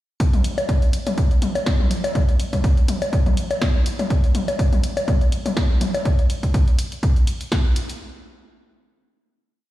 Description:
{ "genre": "techno", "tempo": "123 BPM", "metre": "4/4", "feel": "swing 55% on 16ths", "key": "none", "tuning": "none", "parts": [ { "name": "electronic kick drum", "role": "drums", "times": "0.2-7.6 s", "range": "none", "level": "-18 LUFS", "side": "equal", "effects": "none" }, { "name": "punchy analog drum machine", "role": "drums", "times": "0.2-8.0 s", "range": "hi-hat, snare drum", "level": "-30 LUFS", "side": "equal", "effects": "none" }, { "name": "electronic toms, bongos and congas", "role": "percussion", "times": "0.3-6.0 s", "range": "none", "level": "-24 LUFS", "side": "left 2 dB", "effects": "ping-pong delay" } ], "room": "little or no reverb", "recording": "played on a big sound system in a bare room, stone room reverb", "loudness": "-18 LUFS", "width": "side -15 dB against mid", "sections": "0.2-8.0 drop", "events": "drop 0.2-8.0", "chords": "none" }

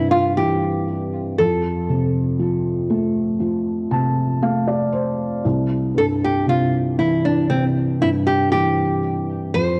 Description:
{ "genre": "pop", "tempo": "59 BPM", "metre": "4/4", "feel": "straight", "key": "C major", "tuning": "A4 = 439 Hz", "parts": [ { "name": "nylon-string guitar", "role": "melody", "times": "0.0-9.8 s", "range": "C4 to C5", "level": "-23 LUFS", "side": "equal", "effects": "cassette tape" }, { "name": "felt-muted upright piano", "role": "accompaniment", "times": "0.0-9.8 s", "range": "C2 to A5", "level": "-22 LUFS", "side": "equal", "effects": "cassette tape" } ], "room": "moderate lush hall reverb, RT60 2.4 s", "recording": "home recording on cassette", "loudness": "-20 LUFS", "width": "mono", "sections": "0.0-9.8 A section", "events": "felt piano fill 3.4-5.4", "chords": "0.0 C; 1.4 F; 5.4 C" }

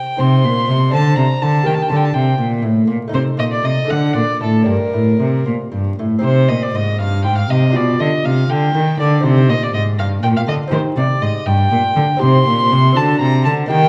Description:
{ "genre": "classical, baroque-style sonata movement with continuo", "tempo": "80 BPM (dotted quarters)", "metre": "6/8", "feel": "straight", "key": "G minor, C minor from 6.2 s", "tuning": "A4 = 441 Hz", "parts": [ { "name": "dark violin", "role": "melody", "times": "0.0-13.9 s", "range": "A4 to C6", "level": "-21 LUFS", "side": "equal", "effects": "none" }, { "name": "lute", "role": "accompaniment", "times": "0.0-13.9 s", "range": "G2 to C5", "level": "-22 LUFS", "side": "equal", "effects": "none" }, { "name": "rich cello", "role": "bass", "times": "0.0-13.9 s", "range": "G2 to Eb3", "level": "-18 LUFS", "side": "equal", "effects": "none" } ], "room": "wet recital hall reverb, RT60 1.7 s", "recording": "dark, warm production, vinyl crackle", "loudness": "-15 LUFS", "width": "mono", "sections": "0.0-6.2 A section; 6.2-13.9 A section", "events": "none", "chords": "0.2 Cm; 0.9 Bbmaj9; 1.7 Eb; 3.1 Adim; 3.9 D5; 4.7 Gm; 6.2 Cm; 7.7 G7/B; 9.2 Cm; 13.0 D7" }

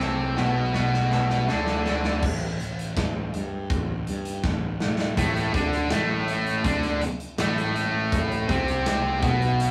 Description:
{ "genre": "quiet-loud alternative rock", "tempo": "81 BPM", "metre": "4/4", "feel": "straight", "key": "A minor", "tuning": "A4 = 440 Hz", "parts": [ { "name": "twangy electric guitar", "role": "arpeggios", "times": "0.0-2.2 s", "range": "A2 to E4", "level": "-34 LUFS", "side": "equal", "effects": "none" }, { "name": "distorted electric guitar", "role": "riff", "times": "0.0-9.7 s", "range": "A2 to D4", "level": "-29 LUFS", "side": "equal", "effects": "overdrive" }, { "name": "thick fuzz guitar", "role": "riff", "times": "0.0-9.7 s", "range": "A2 to D4", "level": "-32 LUFS", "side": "equal", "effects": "distortion" }, { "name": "fuzz fingered electric bass", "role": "bass", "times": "0.0-9.7 s", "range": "A1 to A2", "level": "-31 LUFS", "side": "equal", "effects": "overdrive" }, { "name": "big rock drum kit", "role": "drums", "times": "0.0-9.7 s", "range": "crash cymbal, hi-hat, kick drum, snare drum", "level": "-30 LUFS", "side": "equal", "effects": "none" }, { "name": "crunchy overdriven guitar", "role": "riff", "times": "5.2-9.7 s", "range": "A2 to D4", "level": "-34 LUFS", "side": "equal", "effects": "none" } ], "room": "moderate studio reverb, RT60 0.6 s", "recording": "rough rehearsal-room recording, tube saturation, small room ambience", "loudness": "-25 LUFS", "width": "mono", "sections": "0.0-2.2 A section; 2.2-5.2 B section; 5.2-9.7 C section", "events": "drum fill 0.0-2.2, 4.4-5.2", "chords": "0.0 Am; 2.2 Gsus2/A; 5.2 Am" }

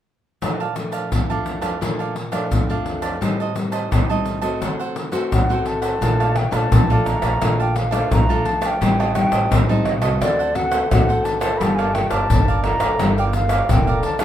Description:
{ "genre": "samba and choro", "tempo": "86 BPM", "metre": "4/4", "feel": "straight", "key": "Bb major", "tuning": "A4 = 441 Hz", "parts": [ { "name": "cavaquinho", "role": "accompaniment", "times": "0.4-14.2 s", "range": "D4 to A5", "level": "-27 LUFS", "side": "right 7 dB", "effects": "none" }, { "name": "nylon-string guitar", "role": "accompaniment", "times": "0.4-14.2 s", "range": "F2 to A4", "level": "-24 LUFS", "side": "left 2 dB", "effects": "none" }, { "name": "egg shaker, surdo, pandeiro and tamborim", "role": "percussion", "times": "0.4-14.2 s", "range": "none", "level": "-21 LUFS", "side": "left 1 dB", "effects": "none" }, { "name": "wooden flute", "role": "melody", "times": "5.3-14.2 s", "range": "D5 to Cb6", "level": "-23 LUFS", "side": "equal", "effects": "none" }, { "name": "upright bass", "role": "bass", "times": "6.0-14.0 s", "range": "E1 to D2", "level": "-23 LUFS", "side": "right 1 dB", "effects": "none" } ], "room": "wet studio reverb, RT60 0.5 s", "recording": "minimal, uncompressed stereo recording", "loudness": "-17 LUFS", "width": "side -11 dB against mid", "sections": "0.4-6.0 A section; 6.0-14.2 B section", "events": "none", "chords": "0.4 Bbmaj7; 3.2 Am7b5; 4.6 D7; 6.0 Bbmaj7; 8.8 Am7b5; 10.2 D7; 11.6 Gm9" }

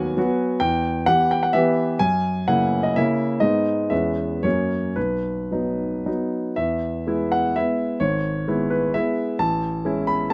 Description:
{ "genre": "classical, romantic triple-time dance for piano with dotted rhythms", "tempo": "103-138 BPM", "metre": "3/4", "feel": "rubato", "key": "B major, E major from 6.6 s", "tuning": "A4 = 440 Hz", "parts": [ { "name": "warm grand piano", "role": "solo", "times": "0.0-10.3 s", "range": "G#1 to B5", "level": "-22 LUFS", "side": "equal", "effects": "none" } ], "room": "light reverb", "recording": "close, detailed microphones", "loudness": "-22 LUFS", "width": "mono", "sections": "0.0-6.6 A section; 6.6-10.3 B section", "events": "none", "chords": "0.0 B/D#; 0.6 Em; 2.0 F#7; 3.4 G#m; 3.9 C#m7/E; 4.4 F#; 5.0 B; 6.6 E; 8.0 E/G#; 9.4 Amaj7" }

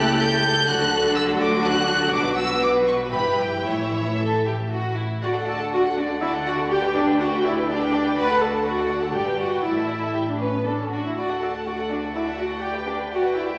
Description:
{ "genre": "quick classical-period movement for string orchestra", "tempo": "122 BPM", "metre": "3/4", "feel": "rubato", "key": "D major", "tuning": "A4 = 441 Hz", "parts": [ { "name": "dark studio violin section", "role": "melody", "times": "0.0-13.6 s", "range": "B4 to G6", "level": "-30 LUFS", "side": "equal", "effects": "none" }, { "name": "rich studio violin section", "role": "second line", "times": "0.0-13.6 s", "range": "E4 to G5", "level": "-28 LUFS", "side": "equal", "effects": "none" }, { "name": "dark studio viola section", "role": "accompaniment", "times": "0.0-13.6 s", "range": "E3 to B4", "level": "-27 LUFS", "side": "equal", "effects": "none" }, { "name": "dark studio double bass section", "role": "bass", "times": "0.0-13.6 s", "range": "G1 to D2", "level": "-34 LUFS", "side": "equal", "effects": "none" }, { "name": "warm studio cello section", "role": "bass", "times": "0.0-13.6 s", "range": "D2 to D3", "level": "-35 LUFS", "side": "equal", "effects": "none" } ], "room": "wet recital hall reverb, RT60 1.4 s", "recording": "none", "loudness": "-23 LUFS", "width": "mono", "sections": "0.0-5.2 A section; 5.2-13.6 B section", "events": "none", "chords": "0.0 A7/C#; 0.7 D; 2.1 Bm; 3.1 Em/G; 3.7 A; 5.2 D; 6.7 G/D; 8.2 D; 9.1 G; 9.6 Asus4; 10.7 Aadd11; 11.2 D; 12.6 G/D" }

